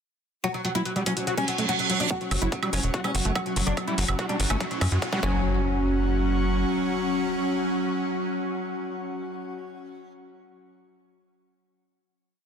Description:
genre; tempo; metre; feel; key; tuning
psychedelic trance; 144 BPM; 4/4; straight; unclear; A4 = 440 Hz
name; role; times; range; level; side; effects
oud; melody; 0.4-10.1 s; F#3 to F#4; -30 LUFS; equal; phaser, sidechain pumping, tape echo
evolving wavetable pad; sustained chords; 0.9-9.6 s; F#3 to C#4; -30 LUFS; right 1 dB; ensemble chorus, built-in reverb, sidechain pumping
overdriven acid bass; riff; 0.4-5.6 s; F#3 to F#4; -31 LUFS; moving between left 5 dB and right 1 dB; distortion, auto-pan, sidechain pumping, dub echo
electronic hi-hat and woodblock; drums; 0.4-5.2 s; none; -31 LUFS; right 1 dB; low-pass filter on hats, low-pass filter on perc, low-pass filter on room
airy breathy pad; texture; 0.9-9.5 s; C#4 to C#6; -32 LUFS; left 2 dB; chorus, sidechain pumping
reverse cymbal, riser and impact; sound effects; 1.4-10.2 s; none; -33 LUFS; right 3 dB; none
electronic kick drum; drums; 2.1-5.3 s; none; -33 LUFS; equal; high-pass filter on kick, high-pass filter on room
tight sequencer bass; bass; 2.3-6.6 s; E1 to F#2; -26 LUFS; equal; none
room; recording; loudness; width
light reverb; dense, heavily limited modern master; -24 LUFS; side -7 dB against mid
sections
0.4-2.1 intro; 2.1-5.4 build; 5.4-8.8 final chord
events
filter sweep on ambient pad 0.4-2.1, 2.1-5.4; reverse cymbal 1.4-2.1; build-up 2.1-5.4; riser 2.1-5.4; filter sweep on acid bass 2.1-5.4; drum fill 3.8-5.4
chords
0.4 F#5

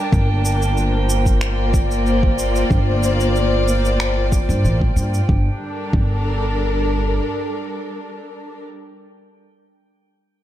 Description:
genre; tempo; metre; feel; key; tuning
organic downtempo; 93 BPM; 4/4; straight; G minor; A4 = 440 Hz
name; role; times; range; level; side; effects
warm studio string section; sustained chords; 0.0-8.6 s; G3 to A5; -22 LUFS; left 1 dB; sidechain pumping
drifting glass-harmonics texture; texture; 0.0-5.3 s; G5; -29 LUFS; right 5 dB; chorus, built-in reverb
upright bass; bass; 0.1-7.2 s; G1 to G2; -19 LUFS; equal; sidechain pumping
electronic kick drum; drums; 0.1-6.1 s; none; -18 LUFS; equal; none
electronic shaker and finger snaps; drums; 0.1-5.3 s; none; -28 LUFS; right 1 dB; overdrive
room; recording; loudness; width
light reverb; dark, warm production; -16 LUFS; side -12 dB against mid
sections
0.0-5.3 A section; 5.3-7.9 B section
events
none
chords
0.1 Bb/G; 5.3 Gm

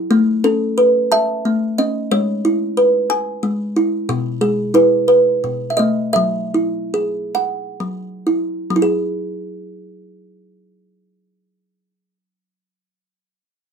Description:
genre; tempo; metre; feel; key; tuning
children's music, lullaby; 39-61 BPM (dotted quarters); 6/8; straight; E major; A4 = 441 Hz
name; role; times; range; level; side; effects
kalimba; solo; 0.0-11.9 s; B2 to A5; -15 LUFS; equal; none
room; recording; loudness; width
moderate small room reverb, RT60 0.5 s; band playing live in one room; -15 LUFS; side -6 dB against mid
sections
0.1-8.8 A section; 8.8-13.7 B section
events
slowing down 4.1-8.8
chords
0.1 Aadd9; 2.1 E/G#; 4.1 E/B; 5.1 B7; 6.2 Eadd9

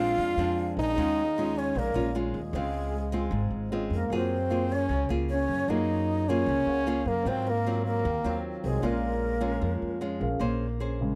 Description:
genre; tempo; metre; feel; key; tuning
bossa nova; 152 BPM; 4/4; straight; Bb minor; A4 = 440 Hz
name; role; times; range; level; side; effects
clear French horn; melody; 0.0-10.0 s; Ab3 to F4; -31 LUFS; equal; none
breathy mellow jazz flute; second line; 0.0-10.0 s; Ab4 to F5; -40 LUFS; equal; none
nylon-string guitar; accompaniment; 0.0-11.2 s; Ab2 to C5; -34 LUFS; equal; none
warm grand piano; accompaniment; 0.0-11.2 s; Db3 to Ab5; -41 LUFS; equal; none
upright bass; bass; 0.0-11.2 s; Ab1 to Ab2; -34 LUFS; equal; none
room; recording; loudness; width
small room ambience; dry, close 1970s-style studio recording; -28 LUFS; mono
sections
0.0-10.4 A section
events
none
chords
0.0 Bb9; 1.0 Eb9sus4; 2.5 Dbmaj7; 4.1 Gbmaj9; 7.3 Ab13; 8.8 Bbm7; 10.4 Bbm9

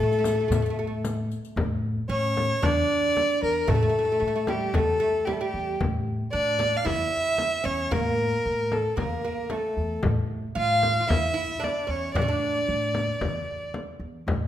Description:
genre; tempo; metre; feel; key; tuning
Arabic maqam ensemble; 114 BPM; 4/4; straight; A maqam hijaz; A4 = 437 Hz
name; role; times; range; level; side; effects
rich violin; melody; 0.0-13.7 s; G4 to F5; -26 LUFS; equal; none
oud; second line; 0.0-13.7 s; G3 to F4; -31 LUFS; right 2 dB; none
upright bass; bass; 0.0-14.5 s; E2 to A2; -29 LUFS; equal; none
riq; percussion; 0.1-1.5 s; none; -38 LUFS; left 5 dB; none
frame drum; percussion; 0.2-14.4 s; none; -30 LUFS; left 2 dB; none
room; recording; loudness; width
moderate recital hall reverb, RT60 1.4 s; minimal, uncompressed stereo recording; -23 LUFS; side -11 dB against mid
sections
0.0-1.6 A section; 1.6-14.5 B section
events
none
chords
none

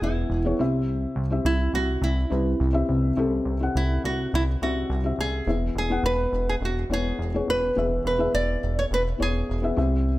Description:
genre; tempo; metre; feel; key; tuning
pop; 105 BPM; 4/4; straight; unclear; A4 = 443 Hz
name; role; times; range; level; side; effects
nylon-string guitar; melody; 0.0-9.7 s; E4 to D5; -27 LUFS; right 2 dB; none
felt-muted upright piano; accompaniment; 0.0-10.2 s; C3 to F#5; -27 LUFS; left 2 dB; none
chorused synth bass; bass; 0.0-10.2 s; E1 to C2; -26 LUFS; equal; none
room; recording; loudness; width
light reverb, small room reverb; none; -22 LUFS; side -17 dB against mid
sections
0.0-10.2 A section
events
none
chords
0.0 E; 0.6 C; 5.5 E

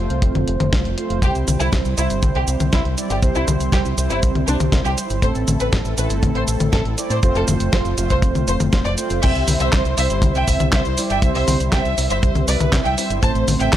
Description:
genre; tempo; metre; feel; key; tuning
italo disco; 120 BPM; 4/4; straight; C major; A4 = 440 Hz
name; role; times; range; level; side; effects
mellow synth brass; stabs; 0.0-13.8 s; G3 to E5; -24 LUFS; right 2 dB; chorus
fingered electric bass with an envelope filter; bass; 0.0-13.8 s; F1 to A2; -22 LUFS; equal; none
clean 12-bit digital drum machine; drums; 0.1-13.8 s; cabasa, crash cymbal, handclaps, hi-hat, snare drum, toms; -23 LUFS; left 2 dB; none
kick drum; drums; 0.2-13.8 s; none; -19 LUFS; equal; none
warm symphonic violin section; melody; 1.2-13.8 s; D4 to A5; -24 LUFS; equal; none
room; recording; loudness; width
light reverb, small room ambience; dry, gritty hardware recording, transformer saturation; -16 LUFS; side -12 dB against mid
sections
0.0-9.2 A section; 9.2-13.8 B section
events
none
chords
0.0 F; 1.2 C; 5.2 Am; 7.2 F; 9.2 C; 13.2 Am

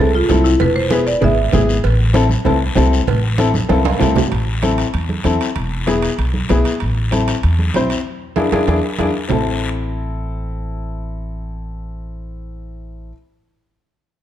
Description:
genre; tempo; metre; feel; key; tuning
latin, cumbia; 193 BPM; 4/4; straight; A harmonic minor; A4 = 439 Hz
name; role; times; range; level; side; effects
marimba with medium hard mallets; melody; 0.0-1.7 s; E4 to E5; -17 LUFS; right 1 dB; none
clear upright piano; accompaniment; 0.0-13.1 s; B3 to C5; -20 LUFS; left 4 dB; none
upright bass; bass; 0.0-13.1 s; E1 to E2; -19 LUFS; equal; none
congas; percussion; 0.3-9.4 s; none; -22 LUFS; right 4 dB; none
cowbell and timbales; percussion; 0.3-9.4 s; none; -25 LUFS; right 8 dB; none
guiro; percussion; 0.3-9.4 s; none; -29 LUFS; left 5 dB; none
room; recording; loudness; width
light reverb; dark, warm production; -14 LUFS; side -11 dB against mid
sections
0.0-4.3 A section; 4.3-9.3 B section; 9.3-11.8 C section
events
drum fill 3.5-4.3, 8.7-9.3; band accent 8.1-9.3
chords
0.0 Am; 0.6 E; 1.8 Am; 5.6 E; 6.8 Am; 8.1 E7; 9.3 Am

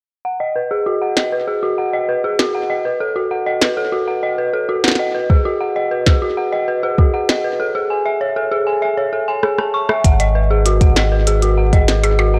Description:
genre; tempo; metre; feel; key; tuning
IDM; 98 BPM; 4/4; straight; G# phrygian; A4 = 439 Hz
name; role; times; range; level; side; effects
dark detuned synth bell; arpeggios; 0.2-12.4 s; F#4 to C#6; -20 LUFS; equal; chorus, low-pass filter, tape echo
glitchy drum kit; drums; 1.2-12.3 s; hi-hat, percussion blips, rim click, snare drum; -20 LUFS; equal; small room ambience
electronic kick drum; drums; 5.3-11.9 s; none; -15 LUFS; equal; small room ambience
round analog bass; bass; 10.0-12.4 s; G#1; -18 LUFS; equal; tube saturation
room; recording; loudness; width
little or no reverb; dry, gritty hardware recording, cassette tape; -17 LUFS; mono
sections
0.2-10.0 A section; 10.0-12.4 B section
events
drum fill 9.4-10.0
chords
0.2 G#m7; 2.7 B7; 5.1 G#m7; 7.6 Amaj7; 10.0 G#m7

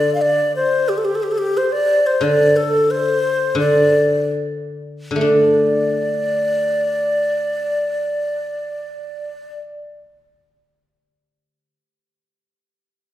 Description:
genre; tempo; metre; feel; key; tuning
chinese traditional, Chinese chamber ensemble; 63-93 BPM; 2/4; rubato; unclear; A4 = 440 Hz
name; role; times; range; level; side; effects
breathy bright xiao; melody; 0.0-9.6 s; G4 to F5; -18 LUFS; left 1 dB; none
hammered dulcimer; second line; 0.0-0.9 s; C5; -46 LUFS; right 3 dB; none
guzheng; accompaniment; 0.0-11.7 s; D3 to D4; -18 LUFS; equal; none
room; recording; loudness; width
wet recital hall reverb, RT60 1.8 s; heard from further back in the room; -15 LUFS; side -13 dB against mid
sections
0.0-5.2 A section; 5.2-9.0 B section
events
slowing down 2.2-5.2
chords
none

